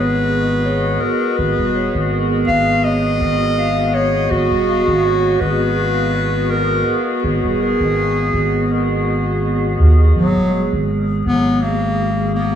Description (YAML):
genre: ambient dub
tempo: 82 BPM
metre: 4/4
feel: swing 54% on 16ths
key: G# minor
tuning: A4 = 436 Hz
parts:
  - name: warm clarinet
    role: melody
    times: 0.0-12.6 s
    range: F#3 to E#5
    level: -18 LUFS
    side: equal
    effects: dub echo
  - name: warbly tape-like pad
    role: sustained chords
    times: 0.0-12.6 s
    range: G#3 to D#5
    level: -20 LUFS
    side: equal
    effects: chorus, built-in reverb
  - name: soft dub sub bass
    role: bass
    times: 0.0-12.6 s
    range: D#1 to D#2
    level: -19 LUFS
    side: equal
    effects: none
room: moderate lush hall reverb, RT60 2.0 s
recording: none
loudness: -14 LUFS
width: side -9 dB against mid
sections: 0.0-10.2 A section; 10.2-12.6 A section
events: none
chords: 0.0 G#m7; 10.2 G#5